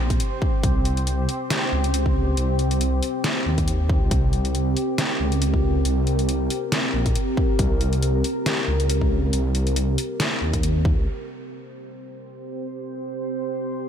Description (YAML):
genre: deep dubstep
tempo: 138 BPM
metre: 4/4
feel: swing 55% on 16ths, half-time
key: C phrygian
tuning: A4 = 439 Hz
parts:
  - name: deep dark ambient pad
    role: sustained chords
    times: 0.0-13.9 s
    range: C4 to C5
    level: -26 LUFS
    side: equal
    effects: chorus, built-in reverb
  - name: dark detuned saw bass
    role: bass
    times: 0.0-11.1 s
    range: Bb1 to Eb2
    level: -22 LUFS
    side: equal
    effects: none
  - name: dubstep drum kit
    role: drums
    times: 0.1-11.2 s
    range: crash cymbal, hi-hat, snare drum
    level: -27 LUFS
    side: equal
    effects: low-pass filter on hats, low-pass filter on snare, low-pass filter on cymbals, low-pass filter on room
  - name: electronic kick drum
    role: drums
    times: 0.1-10.9 s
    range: none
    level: -22 LUFS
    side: equal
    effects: none
room: little or no reverb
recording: none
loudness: -20 LUFS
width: side -8 dB against mid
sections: 0.0-11.1 A section; 11.1-13.9 B section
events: none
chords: 0.0 Cm; 11.1 C5